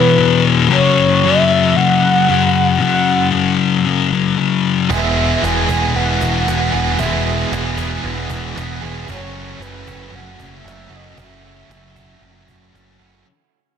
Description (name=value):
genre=rock, shoegaze and dream pop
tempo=115 BPM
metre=4/4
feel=straight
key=unclear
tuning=A4 = 439 Hz
part: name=mellow horn-like synth lead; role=melody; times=0.0-12.8 s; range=B4 to G#5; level=-18 LUFS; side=equal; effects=chorus, digital delay
part: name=thick fuzz guitar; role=riff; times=0.0-13.3 s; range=E2 to F#3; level=-15 LUFS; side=left 7 dB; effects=distortion, lush chorus
part: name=direct-recorded clean electric guitar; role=arpeggios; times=4.9-13.3 s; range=G#3 to A4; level=-32 LUFS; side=right 12 dB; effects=none
part: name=overdriven electric guitar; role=riff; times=4.9-13.3 s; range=E2 to G#4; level=-25 LUFS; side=right 13 dB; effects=reverse reverb
part: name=tight distorted guitar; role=riff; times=4.9-13.3 s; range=F#2 to E4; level=-24 LUFS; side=right 2 dB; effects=distortion
part: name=growling picked electric bass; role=bass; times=4.9-13.2 s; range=E1 to F#1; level=-23 LUFS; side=right 1 dB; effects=overdrive
part: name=cajon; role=drums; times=4.9-12.9 s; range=none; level=-29 LUFS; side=right 1 dB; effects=none
room=light reverb, digital ambience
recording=dense, heavily limited modern master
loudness=-13 LUFS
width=side -8 dB against mid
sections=0.0-13.3 A section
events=fade-out 0.0-13.3; break 13.0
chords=0.0 E5; 0.7 F#5; 4.9 Eadd9; 9.1 F#m7